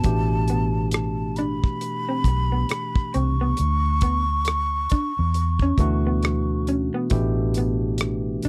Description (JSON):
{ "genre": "R&B, neo-soul", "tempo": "68 BPM", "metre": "4/4", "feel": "swing 60% on 16ths", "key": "D major", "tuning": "A4 = 440 Hz", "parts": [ { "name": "breathy mellow silver concert flute", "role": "melody", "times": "0.0-6.7 s", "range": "A5 to C#6", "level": "-30 LUFS", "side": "equal", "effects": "slapback echo" }, { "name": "barky tine electric piano", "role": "accompaniment", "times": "0.0-8.5 s", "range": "B2 to G4", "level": "-29 LUFS", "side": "equal", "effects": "none" }, { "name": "damped 70s drum kit", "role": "drums", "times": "0.0-8.5 s", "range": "hi-hat, kick drum, rim click", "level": "-26 LUFS", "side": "equal", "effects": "none" }, { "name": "vintage muted fingered electric bass", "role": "bass", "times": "0.1-8.5 s", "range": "A1 to E2", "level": "-26 LUFS", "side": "equal", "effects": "none" }, { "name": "electric guitar through a small old amp", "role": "second line", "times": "0.5-8.5 s", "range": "B3 to D4", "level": "-30 LUFS", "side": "equal", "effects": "none" } ], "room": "little or no reverb", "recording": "dry, close 1970s-style studio recording", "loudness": "-23 LUFS", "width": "mono", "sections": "0.0-8.5 A section", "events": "none", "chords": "0.0 A7sus2; 3.6 Dmaj7; 7.1 A7sus2", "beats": "| 0.05 0.93 1.81 2.69 | 3.58 4.46 5.34 6.22 | 7.11 7.99" }